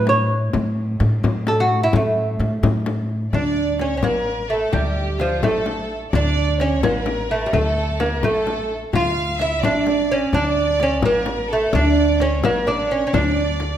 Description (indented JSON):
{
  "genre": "Persian modal ensemble",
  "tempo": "86 BPM (dotted quarters)",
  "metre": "6/8",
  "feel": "straight",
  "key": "A dastgah mahur, D avaz esfahan from 3.3 s",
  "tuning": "A4 = 438 Hz",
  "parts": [
    { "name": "lute", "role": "melody", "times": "0.0-13.8 s", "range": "F3 to C#5", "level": "-20 LUFS", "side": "right 2 dB", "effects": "none" },
    { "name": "upright bass", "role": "bass", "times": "0.0-13.8 s", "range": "A1 to A2", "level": "-23 LUFS", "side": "equal", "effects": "none" },
    { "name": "warm cello", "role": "drone", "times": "0.0-3.4 s", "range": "A2", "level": "-30 LUFS", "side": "equal", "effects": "none" },
    { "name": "frame drum", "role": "percussion", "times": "0.1-13.7 s", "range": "none", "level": "-25 LUFS", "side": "left 4 dB", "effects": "none" },
    { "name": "clear studio violin section", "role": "second line", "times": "3.3-13.8 s", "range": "F4 to F5", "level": "-27 LUFS", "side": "right 1 dB", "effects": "none" }
  ],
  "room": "wet recital hall reverb, RT60 1.5 s",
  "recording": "none",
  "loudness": "-17 LUFS",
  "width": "side -10 dB against mid",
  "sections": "0.0-3.3 A section; 3.3-13.8 B section",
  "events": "none",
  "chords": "none",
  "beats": "| 0.54 1.24 | 1.94 2.63 | 3.33 4.03 | 4.73 5.43 | 6.13 6.83 | 7.53 8.23 | 8.93 9.63 | 10.33 11.03 | 11.73 12.43 | 13.13"
}